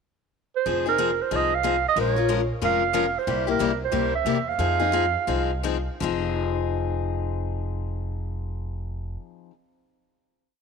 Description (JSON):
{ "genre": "acoustic string swing (jazz manouche)", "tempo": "157-186 BPM", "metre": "4/4", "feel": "swing 60% on 8ths", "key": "F minor", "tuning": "A4 = 439 Hz", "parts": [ { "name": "mellow clarinet", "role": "melody", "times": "0.6-5.7 s", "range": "Bb4 to F5", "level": "-24 LUFS", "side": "right 10 dB", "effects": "none" }, { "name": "picked steel-string acoustic guitar", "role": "accompaniment", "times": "0.7-9.5 s", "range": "C3 to Bb4", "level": "-26 LUFS", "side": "left 12 dB", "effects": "none" }, { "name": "upright bass", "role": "bass", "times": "0.7-9.1 s", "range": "F1 to F2", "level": "-29 LUFS", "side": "equal", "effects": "none" } ], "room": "moderate plate reverb, RT60 2.9 s", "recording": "1960s-style stereo with parts hard left and right", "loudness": "-22 LUFS", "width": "side -5 dB against mid", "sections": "0.0-0.7 pickup bar; 0.7-6.0 A section; 6.0-9.1 final chord", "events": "slowing down 3.3-6.0", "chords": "0.0 N.C.; 0.7 Fm7; 2.0 Bbm7; 3.3 C7; 4.6 Fm7" }